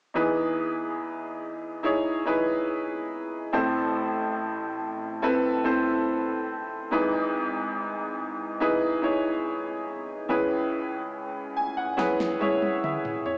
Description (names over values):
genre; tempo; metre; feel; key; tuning
pop ballad; 71 BPM; 4/4; straight; E major; A4 = 440 Hz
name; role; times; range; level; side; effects
bright upright piano; accompaniment; 0.1-13.4 s; G#1 to G#5; -24 LUFS; equal; cassette tape, plate reverb
smooth R&B drum kit; drums; 12.0-13.4 s; snare drum, toms; -33 LUFS; equal; cassette tape
room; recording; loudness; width
moderate small room reverb, RT60 0.5 s; home recording on cassette, small speaker sound; -24 LUFS; side -28 dB against mid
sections
0.2-13.4 A section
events
upright piano fill 11.1-13.4; drum fill 12.0-13.4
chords
0.2 Emaj7; 3.5 Am; 6.9 Emaj7/G#; 10.3 C#m7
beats
| 0.16 1.00 1.85 2.69 | 3.54 4.38 5.23 6.07 | 6.92 7.76 8.61 9.45 | 10.30 11.14 11.99 12.83